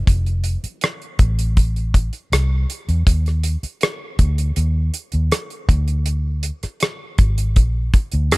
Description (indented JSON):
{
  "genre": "lush 1970s-style soul",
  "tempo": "80 BPM",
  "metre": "4/4",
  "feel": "straight",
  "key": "unclear",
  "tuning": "A4 = 441 Hz",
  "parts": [
    { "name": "vintage muted fingered electric bass", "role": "bass", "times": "0.0-8.4 s", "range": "F1 to F2", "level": "-18 LUFS", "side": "equal", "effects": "none" },
    { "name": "damped 70s drum kit", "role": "drums", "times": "0.1-8.4 s", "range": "hi-hat, kick drum, rim click", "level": "-17 LUFS", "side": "equal", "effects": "none" }
  ],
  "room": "little or no reverb",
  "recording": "none",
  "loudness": "-17 LUFS",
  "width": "side -23 dB against mid",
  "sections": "0.1-8.4 A section",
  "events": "none",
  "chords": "none",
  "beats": "| 0.07 0.82 1.57 2.32 | 3.07 3.82 4.57 5.32 | 6.07 6.82 7.57 8.32"
}